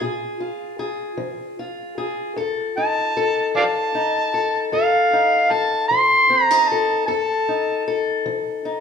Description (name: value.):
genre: acoustic country blues, solo or duo.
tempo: 51 BPM (dotted quarters).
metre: 12/8.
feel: straight.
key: F mixolydian.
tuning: A4 = 442 Hz.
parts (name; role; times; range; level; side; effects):
fingerpicked steel-string acoustic guitar; accompaniment; 0.0-8.8 s; F2 to A4; -23 LUFS; left 5 dB; none.
overdriven harmonica; melody; 2.8-7.9 s; D5 to C6; -17 LUFS; right 1 dB; none.
room: wet large studio reverb, RT60 1.4 s.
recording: band playing live in one room.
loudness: -17 LUFS.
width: side -6 dB against mid.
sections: 0.0-8.8 A section.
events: none.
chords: 0.0 Bb7(no3); 2.4 F7.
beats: 0.01 1.18 | 2.36 3.54 4.72 5.90 | 7.08 8.26.